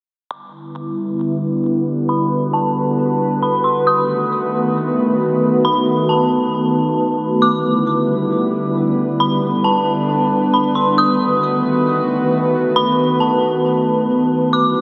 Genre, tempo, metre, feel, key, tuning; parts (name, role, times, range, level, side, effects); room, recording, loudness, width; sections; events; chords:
hip hop; 135 BPM; 4/4; half-time; E minor; A4 = 443 Hz
dark detuned synth bell; melody; 0.3-14.8 s; A5 to D#6; -22 LUFS; equal; chorus, low-pass filter, tape echo
warbly tape-like pad; sustained chords; 0.7-14.8 s; D3 to B4; -18 LUFS; equal; chorus, built-in reverb, low-pass filter
wet huge ambient reverb, RT60 8.2 s; dreamy mix soaked in reverb; -17 LUFS; mono
0.3-7.4 A section; 7.4-14.8 B section
filter sweep 0.3-7.4
0.3 Em7; 3.9 B7; 7.4 Em7; 11.0 B7